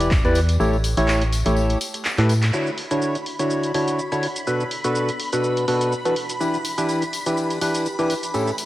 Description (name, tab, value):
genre	piano house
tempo	124 BPM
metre	4/4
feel	swing 55% on 16ths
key	D major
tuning	A4 = 440 Hz
part	percussive organ stab	riff	0.0-8.5 s	A2 to D5	-21 LUFS	equal	wide subtle chorus, sidechain pumping, analog delay
part	organ-like FM bass	bass	0.0-2.5 s	E1 to A2	-20 LUFS	equal	sidechain pumping
part	punchy analog drum machine	drums	0.0-8.7 s	handclaps, hi-hat, shaker	-29 LUFS	equal	cassette tape
part	tambourine	percussion	0.0-2.5, 6.4-8.7 s	none	-35 LUFS	left 7 dB	none
part	string machine, violins	sustained chords	2.5-8.7 s	B5	-31 LUFS	equal	ensemble chorus, sidechain pumping
room	moderate lush hall reverb, RT60 1.9 s, digital ambience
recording	home recording on cassette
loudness	-19 LUFS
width	side -15 dB against mid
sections	0.0-2.5 A section; 2.5-8.7 B section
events	drum fill 2.2-2.5; band accent 2.4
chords	0.0 Em7; 0.6 A7; 2.5 Dmaj9; 4.5 Bm7; 6.2 Em7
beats	0.12 | 0.60 1.08 1.57 2.05 | 2.54 3.02 3.50 3.99 | 4.47 4.96 5.44 5.92 | 6.41 6.89 7.37 7.86 | 8.34